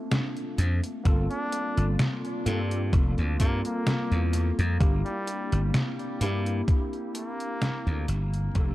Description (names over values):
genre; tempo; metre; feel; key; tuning
vaporwave; 64 BPM; 4/4; swing 54% on 16ths; unclear; A4 = 440 Hz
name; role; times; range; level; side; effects
tine electric piano; accompaniment; 0.0-8.7 s; Bb3 to A4; -34 LUFS; left 1 dB; fast stereo tremolo, ensemble chorus, dub echo
warbly tape-like pad; sustained chords; 0.0-8.7 s; F3 to A4; -38 LUFS; left 1 dB; chorus, built-in reverb, vintage 12-bit sampler grit
detuned 8-bit digital drum machine; drums; 0.1-8.7 s; hi-hat, snare drum; -30 LUFS; equal; overdrive, dub echo
slap bass; bass; 0.6-8.7 s; F1 to G2; -25 LUFS; equal; none
electronic kick drum; drums; 1.1-8.7 s; none; -23 LUFS; equal; overdrive
clear flugelhorn; melody; 1.3-8.1 s; G3 to D4; -36 LUFS; equal; tape echo
room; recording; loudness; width
light reverb; echo-heavy mix; -24 LUFS; side -16 dB against mid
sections
0.0-8.7 A section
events
fade-out 6.1-8.7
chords
0.0 Bbmaj9; 1.1 Gm11; 4.8 C7/G